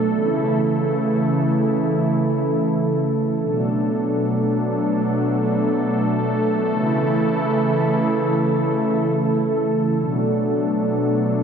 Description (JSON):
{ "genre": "hip hop", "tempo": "free time", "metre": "none", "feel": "none", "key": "B minor", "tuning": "A4 = 439 Hz", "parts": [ { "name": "warm analog pad", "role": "solo", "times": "0.0-11.4 s", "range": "B2 to A4", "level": "-18 LUFS", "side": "right 1 dB", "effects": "chorus, low-pass filter, diffuse ambient delay" } ], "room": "wet lush hall reverb, RT60 1.7 s", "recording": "dreamy mix soaked in reverb", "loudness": "-18 LUFS", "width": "side -7 dB against mid", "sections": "0.0-3.4 A section; 3.4-11.4 B section", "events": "filter sweep on analog synth pad 0.0-3.4", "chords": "0.1 A; 3.4 Bm7; 6.7 A; 10.0 Bm7" }